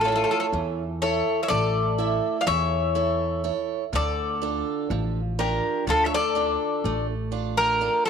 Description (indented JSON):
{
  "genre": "greek folk, Greek bouzouki band",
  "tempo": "123 BPM (eighths)",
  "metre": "9/8",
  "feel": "straight",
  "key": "A phrygian dominant",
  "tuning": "A4 = 442 Hz",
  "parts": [
    { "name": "Greek bouzouki", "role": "melody", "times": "0.0-8.1 s", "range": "A4 to F5", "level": "-25 LUFS", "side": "equal", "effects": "none" },
    { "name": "Greek bouzouki", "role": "second line", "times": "0.0-8.1 s", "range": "F4 to D5", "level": "-28 LUFS", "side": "left 13 dB", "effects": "none" },
    { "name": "picked steel-string acoustic guitar", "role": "accompaniment", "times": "0.0-8.1 s", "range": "D3 to E5", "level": "-29 LUFS", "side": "right 11 dB", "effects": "none" },
    { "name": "upright bass", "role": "bass", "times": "0.0-7.9 s", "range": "A1 to E2", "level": "-29 LUFS", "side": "equal", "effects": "none" }
  ],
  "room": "moderate echo chamber reverb, RT60 1.4 s, small room ambience",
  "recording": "1960s-style stereo with parts hard left and right",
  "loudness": "-22 LUFS",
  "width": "side -7 dB against mid",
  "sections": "0.0-8.1 A section",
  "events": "none",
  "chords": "0.0 A; 3.9 Dm",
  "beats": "0.03 0.52 1.01 1.49 1.98 2.47 2.95 3.44 | 3.93 4.41 4.90 5.38 5.87 6.36 6.84 7.33 7.82"
}